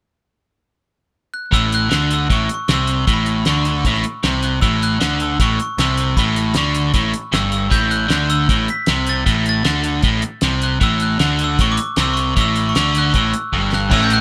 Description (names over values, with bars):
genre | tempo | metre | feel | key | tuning
indie rock | 155 BPM | 4/4 | straight | unclear | A4 = 440 Hz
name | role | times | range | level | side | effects
glockenspiel with hard plastic mallets | melody | 1.3-14.2 s | B5 to B6 | -25 LUFS | equal | slapback echo
biting overdriven guitar | riff | 1.5-14.2 s | G2 to D3 | -20 LUFS | equal | none
fuzz picked electric bass | bass | 1.5-14.2 s | G1 to D2 | -24 LUFS | equal | overdrive
cloth-damped thuddy drum kit | drums | 1.5-14.2 s | crash cymbal, hi-hat, kick drum, snare drum | -22 LUFS | equal | none
crunchy overdriven guitar | riff | 13.9-14.2 s | A2 to E4 | -22 LUFS | equal | analog chorus, slapback echo
room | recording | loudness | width
small room reverb | rough home demo mix | -17 LUFS | mono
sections
0.0-1.5 A section; 1.5-13.9 B section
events
drum fill 13.5-13.9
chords
0.0 N.C.; 1.5 A5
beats
0.36 0.75 1.14 | 1.52 1.91 2.30 2.69 | 3.07 3.46 3.85 4.23 | 4.62 5.01 5.40 5.78 | 6.17 6.56 6.95 7.33 | 7.72 8.11 8.49 8.88 | 9.27 9.65 10.04 10.43 | 10.82 11.21 11.59 11.98 | 12.37 12.75 13.14 13.53 | 13.91